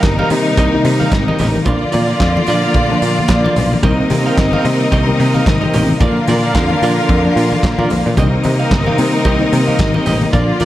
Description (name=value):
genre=disco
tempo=111 BPM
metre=4/4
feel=swing 56% on 16ths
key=C minor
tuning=A4 = 440 Hz
part: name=clear studio string section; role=second line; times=0.0-10.7 s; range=G3 to F5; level=-19 LUFS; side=equal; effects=none
part: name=electric guitar at the edge of break-up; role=accompaniment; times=0.0-10.7 s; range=F4 to F5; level=-23 LUFS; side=right 3 dB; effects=tremolo
part: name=reed electric piano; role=accompaniment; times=0.0-10.7 s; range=C3 to Eb4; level=-20 LUFS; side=left 2 dB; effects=fast tremolo
part: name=clear studio string section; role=sustained chords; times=0.0-10.7 s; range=C3 to F4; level=-19 LUFS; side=left 1 dB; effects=none
part: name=picked electric bass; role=bass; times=0.0-10.7 s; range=G1 to C3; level=-18 LUFS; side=equal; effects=none
part: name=warm soul drum kit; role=drums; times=0.0-10.7 s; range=handclaps, hi-hat, kick drum, snare drum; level=-19 LUFS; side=equal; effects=none
part: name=congas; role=percussion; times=0.0-10.7 s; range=none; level=-23 LUFS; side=left 3 dB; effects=none
room=light reverb, small room ambience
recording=dark, warm production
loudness=-11 LUFS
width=side -14 dB against mid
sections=0.0-10.7 A section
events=none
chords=0.0 Cm7; 1.7 Bb; 3.8 Cm7; 6.0 Bb; 8.2 Cm7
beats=0.04 0.58 1.12 | 1.66 2.21 2.75 3.29 | 3.83 4.38 4.92 5.46 | 6.00 6.55 7.09 7.63 | 8.17 8.71 9.26 9.80 | 10.34